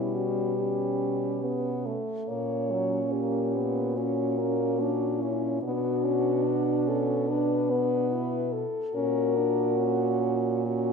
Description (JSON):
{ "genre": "classical, lyrical piece for horn quartet", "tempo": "72 BPM", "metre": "4/4", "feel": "rubato", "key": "B minor", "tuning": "A4 = 441 Hz", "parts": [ { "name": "dark French horn", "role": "melody", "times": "0.0-10.9 s", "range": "E4 to C#5", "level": "-29 LUFS", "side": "left 9 dB", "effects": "none" }, { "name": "mellow French horn", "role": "second line", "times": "0.0-10.9 s", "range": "C#4 to F#4", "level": "-31 LUFS", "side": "right 10 dB", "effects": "none" }, { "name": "mellow French horn", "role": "accompaniment", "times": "0.0-10.9 s", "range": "F#3 to D4", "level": "-31 LUFS", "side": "left 2 dB", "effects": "none" }, { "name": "mellow French horn", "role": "bass", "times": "0.0-10.9 s", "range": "A#2 to B2", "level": "-32 LUFS", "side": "right 4 dB", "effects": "none" } ], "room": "moderate scoring stage reverb, RT60 1.9 s", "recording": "minimal, uncompressed stereo recording", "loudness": "-25 LUFS", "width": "side -5 dB against mid", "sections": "0.0-10.9 A section", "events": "none", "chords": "0.0 C#7(b5, no3)/B; 2.3 F#/A#; 5.6 Bm; 9.0 F#/A#" }